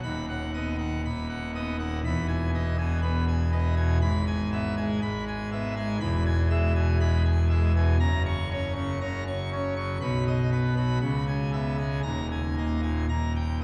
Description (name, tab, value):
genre	classical, organ toccata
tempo	120 BPM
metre	4/4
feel	straight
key	unclear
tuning	A4 = 441 Hz
part	pipe organ, full organ	solo	0.0-13.6 s	D#1 to C#6	-27 LUFS	equal	none
room	wet church reverb, RT60 3.4 s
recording	vinyl crackle, small room ambience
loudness	-27 LUFS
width	mono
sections	0.0-13.6 A section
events	none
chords	0.0 B/D#; 2.0 Emaj7; 4.0 E/G#; 6.0 E; 8.0 F#; 10.0 B; 11.0 C#m7; 12.0 D#sus4; 13.1 D#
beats	| 0.02 0.52 1.03 1.53 | 2.03 2.52 3.02 3.52 | 4.02 4.51 5.01 5.51 | 6.01 6.50 7.00 7.50 | 8.00 8.50 9.01 9.51 | 10.01 10.51 11.01 11.52 | 12.04 12.57 13.09 13.61